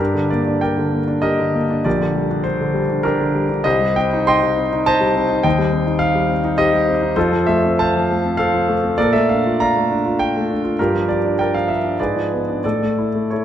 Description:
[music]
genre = classical, romantic character piece for solo piano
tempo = 88-107 BPM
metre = 3/4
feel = rubato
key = G minor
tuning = A4 = 440 Hz
[part]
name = clear concert grand piano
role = solo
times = 0.0-13.4 s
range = Bb1 to C6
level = -15 LUFS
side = equal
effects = none
[sound]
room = wet recital hall reverb, RT60 1.4 s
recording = none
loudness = -15 LUFS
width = side -10 dB against mid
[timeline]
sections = 0.0-13.4 A section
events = none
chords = 0.0 Gm; 1.9 Gm/Bb; 3.7 Cm; 5.5 Cm/Eb; 7.2 F; 9.0 Bbmaj7; 10.8 Gm7; 12.0 G#dim7; 12.6 A

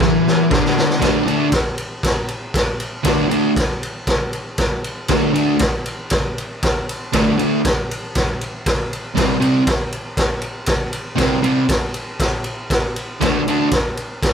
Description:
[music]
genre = garage rock duo or trio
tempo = 118 BPM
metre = 4/4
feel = straight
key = unclear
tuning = A4 = 440 Hz
[part]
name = fuzz guitar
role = riff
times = 0.0-13.7 s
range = C3 to D4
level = -16 LUFS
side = equal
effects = distortion
[part]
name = raw garage drum kit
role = drums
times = 0.0-14.3 s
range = kick drum, ride cymbal, snare drum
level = -19 LUFS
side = equal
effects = none
[sound]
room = moderate studio reverb, RT60 0.6 s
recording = band playing live in one room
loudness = -16 LUFS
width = side -7 dB against mid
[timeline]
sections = 0.0-1.0 A section; 1.0-14.3 B section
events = drum fill 0.0-1.0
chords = 0.0 N.C.; 1.0 D5; 9.2 C5; 13.2 D5

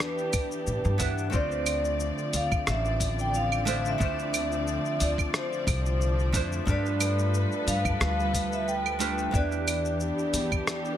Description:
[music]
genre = sunset chillout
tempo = 90 BPM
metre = 4/4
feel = swing 54% on 16ths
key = D dorian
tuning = A4 = 439 Hz
[part]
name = vibraphone with medium mallets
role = melody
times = 0.0-11.0 s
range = B4 to G5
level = -31 LUFS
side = equal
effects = digital delay
[part]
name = nylon-string guitar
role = accompaniment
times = 0.0-11.0 s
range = A3 to C5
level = -34 LUFS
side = moving between left 3 dB and right 5 dB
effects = auto-pan, digital delay
[part]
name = dark studio string section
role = sustained chords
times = 0.0-11.0 s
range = D3 to D5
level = -32 LUFS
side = left 1 dB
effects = none
[part]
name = dusty soul sampler-style drum kit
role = drums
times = 0.0-11.0 s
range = claves, hi-hat, rim click, shaker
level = -32 LUFS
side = right 1 dB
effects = none
[part]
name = electronic kick drum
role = drums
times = 0.3-10.6 s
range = none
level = -29 LUFS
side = equal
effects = none
[part]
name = upright bass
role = bass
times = 0.7-10.6 s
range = A1 to A2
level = -30 LUFS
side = equal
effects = none
[sound]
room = light reverb, small room reverb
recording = none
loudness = -25 LUFS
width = side -10 dB against mid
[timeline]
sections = 0.0-11.0 A section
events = none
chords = 0.0 Em7; 1.3 Dm9; 6.7 G9; 9.3 Em7

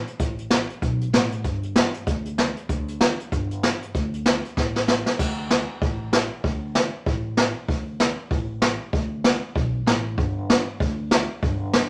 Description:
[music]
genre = rockabilly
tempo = 192 BPM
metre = 4/4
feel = swing 60% on 8ths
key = unclear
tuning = A4 = 440 Hz
[part]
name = jazz brush drum kit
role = drums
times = 0.1-11.8 s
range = crash cymbal, hi-hat, kick drum, snare drum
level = -24 LUFS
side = equal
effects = none
[part]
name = upright bass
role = bass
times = 0.2-11.9 s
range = G1 to D2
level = -32 LUFS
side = equal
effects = none
[sound]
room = moderate studio reverb, RT60 0.7 s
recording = none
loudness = -24 LUFS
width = mono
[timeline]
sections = 0.0-5.2 A section; 5.2-11.9 B section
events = drum fill 4.6-5.2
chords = none

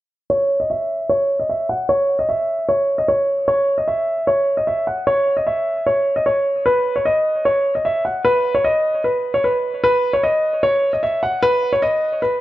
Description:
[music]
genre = hip hop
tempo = 151 BPM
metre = 4/4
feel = half-time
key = unclear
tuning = A4 = 440 Hz
[part]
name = dark concert grand piano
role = melody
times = 0.3-12.4 s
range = B4 to F#5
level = -16 LUFS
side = equal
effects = low-pass filter, digital delay
[sound]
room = light reverb, studio reverb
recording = none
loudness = -16 LUFS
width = side -15 dB against mid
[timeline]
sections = 0.3-12.4 A section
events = filter sweep on grand piano 0.3-12.4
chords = none

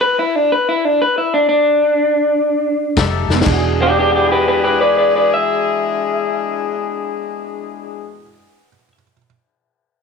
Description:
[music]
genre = electric blues shuffle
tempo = 121 BPM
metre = 4/4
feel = swing 65% on 8ths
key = E mixolydian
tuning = A4 = 440 Hz
[part]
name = electric guitar through a small old amp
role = melody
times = 0.0-8.9 s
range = D4 to E5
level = -14 LUFS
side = equal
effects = none
[part]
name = mellow horn section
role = stabs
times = 3.0-8.2 s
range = G#3 to A4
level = -21 LUFS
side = left 11 dB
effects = none
[part]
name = vintage muted fingered electric bass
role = bass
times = 3.0-8.2 s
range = E1 to F1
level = -21 LUFS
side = right 1 dB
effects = none
[part]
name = vintage drum kit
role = drums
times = 3.0-3.6 s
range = crash cymbal, kick drum, ride cymbal, snare drum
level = -20 LUFS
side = left 4 dB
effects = none
[part]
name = warm upright piano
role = accompaniment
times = 3.3-9.2 s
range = E2 to D7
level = -25 LUFS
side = right 13 dB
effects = none
[sound]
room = light reverb, studio reverb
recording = 1960s-style stereo with parts hard left and right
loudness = -13 LUFS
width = side -5 dB against mid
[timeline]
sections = 0.0-3.5 A section; 3.5-7.4 B section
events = stop 0.0-3.0; drum fill 3.2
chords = 0.0 N.C.; 3.0 F9; 3.5 E7

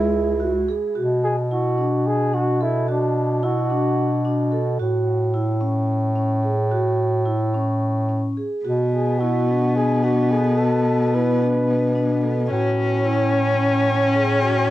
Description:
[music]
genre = contemporary instrumental, chamber music in an uneven meter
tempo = 218 BPM (eighths)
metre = 7/8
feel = straight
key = B dorian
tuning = A4 = 440 Hz
[part]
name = breathy flugelhorn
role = melody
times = 0.0-4.5, 8.9-12.2 s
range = D4 to B4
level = -25 LUFS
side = equal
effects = cassette tape, analog delay
[part]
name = dark cello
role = second line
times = 0.0-0.6, 8.7-14.7 s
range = G#3 to C#4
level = -22 LUFS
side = left 2 dB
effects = cassette tape, analog delay
[part]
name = vibraphone with medium mallets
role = arpeggios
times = 0.0-14.7 s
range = C#4 to A4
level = -24 LUFS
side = moving between left 3 dB and right 3 dB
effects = auto-pan, cassette tape
[part]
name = mellow bass clarinet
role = bass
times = 0.0-14.7 s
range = C#2 to B2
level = -22 LUFS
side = equal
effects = none
[sound]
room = moderate small room reverb, RT60 0.5 s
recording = home recording on cassette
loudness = -18 LUFS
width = side -15 dB against mid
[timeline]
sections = 1.0-14.7 A section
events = none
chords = 0.0 C#m; 1.0 Bm7; 4.8 F#m7/A; 8.7 Bm7; 12.5 F#m/A

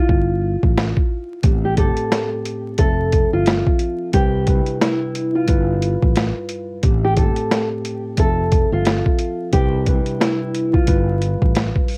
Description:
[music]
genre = hip hop, boom-bap hip-hop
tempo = 89 BPM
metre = 4/4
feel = swing 60% on 16ths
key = unclear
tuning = A4 = 439 Hz
[part]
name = nylon-string guitar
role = melody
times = 0.0-12.0 s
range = E4 to A4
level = -24 LUFS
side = equal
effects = high-pass filter, low-pass filter, cassette tape
[part]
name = fretless electric bass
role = bass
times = 0.1-11.7 s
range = F1 to C2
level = -23 LUFS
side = equal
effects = transformer saturation
[part]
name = boom bap sampler-style drum kit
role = drums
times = 0.1-12.0 s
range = hi-hat, kick drum, snare drum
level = -20 LUFS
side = equal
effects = cassette tape
[part]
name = tine electric piano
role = accompaniment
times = 1.4-12.0 s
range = G2 to E5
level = -28 LUFS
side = equal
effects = cassette tape, high-pass filter, low-pass filter
[sound]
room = light reverb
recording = home recording on cassette, vinyl crackle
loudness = -18 LUFS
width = mono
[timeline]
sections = 0.0-12.0 A section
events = break 0.0-1.4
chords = 0.1 Fadd9/G; 1.4 Am7; 2.8 Fmaj7; 4.1 Cmaj7; 5.5 G7; 6.8 Am7; 8.2 Fmaj7; 9.5 Cmaj7; 10.9 G7

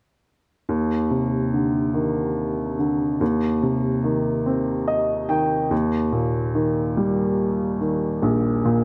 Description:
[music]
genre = pop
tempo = 48 BPM (dotted quarters)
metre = 6/8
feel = straight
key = Eb major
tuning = A4 = 440 Hz
[part]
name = clear baby grand piano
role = accompaniment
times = 0.7-8.8 s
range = Bb1 to G5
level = -22 LUFS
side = equal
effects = none
[sound]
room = moderate plate reverb, RT60 2.4 s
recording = none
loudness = -22 LUFS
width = mono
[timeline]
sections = 0.7-8.8 A section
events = grand piano fill 4.5-5.7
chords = 0.7 Cmadd9/Eb; 3.2 Eb6; 5.7 Eb

